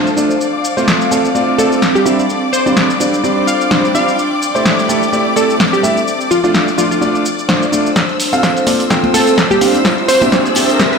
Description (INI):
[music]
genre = piano house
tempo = 127 BPM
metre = 4/4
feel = swing 56% on 16ths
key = F major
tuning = A4 = 441 Hz
[part]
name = rich studio string section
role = sustained chords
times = 0.0-11.0 s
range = A4 to E6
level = -20 LUFS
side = left 2 dB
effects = sidechain pumping
[part]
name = clear concert grand piano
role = riff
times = 0.0-11.0 s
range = G3 to G5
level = -16 LUFS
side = right 1 dB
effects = sidechain pumping, low-pass filter, ping-pong delay
[part]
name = ethereal airy pad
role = texture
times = 0.0-11.0 s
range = C4 to A5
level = -20 LUFS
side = left 1 dB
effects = ensemble chorus, built-in reverb, phaser, sidechain pumping
[part]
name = punchy analog drum machine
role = drums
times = 0.1-11.0 s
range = hi-hat, shaker, snare drum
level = -17 LUFS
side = left 1 dB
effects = none
[part]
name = plucky unison lead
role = melody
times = 1.6-10.3 s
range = F4 to F5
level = -17 LUFS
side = equal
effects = ping-pong delay
[part]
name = electronic kick drum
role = drums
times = 8.0-10.9 s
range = none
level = -22 LUFS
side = left 1 dB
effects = high-pass filter on kick
[part]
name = tambourine and congas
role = percussion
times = 8.0-10.9 s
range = none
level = -22 LUFS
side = equal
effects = none
[part]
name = riser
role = sound effects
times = 8.4-11.0 s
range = none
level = -22 LUFS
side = right 1 dB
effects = none
[sound]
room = moderate lush hall reverb, RT60 1.9 s, digital ambience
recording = played on a big sound system in a bare room, stone room reverb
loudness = -11 LUFS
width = side -5 dB against mid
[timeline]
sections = 0.0-8.0 A section; 8.0-11.0 B section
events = build-up 8.0-11.0; drum fill 8.0-11.0; riser 8.4-11.0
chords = 0.4 F; 2.1 Gsus4; 4.2 Am7; 6.1 Dm7; 8.0 F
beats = | 0.40 0.88 1.35 1.82 | 2.29 2.76 3.24 3.71 | 4.18 4.65 5.13 5.60 | 6.07 6.54 7.02 7.49 | 7.96 8.43 8.91 9.38 | 9.85 10.32 10.80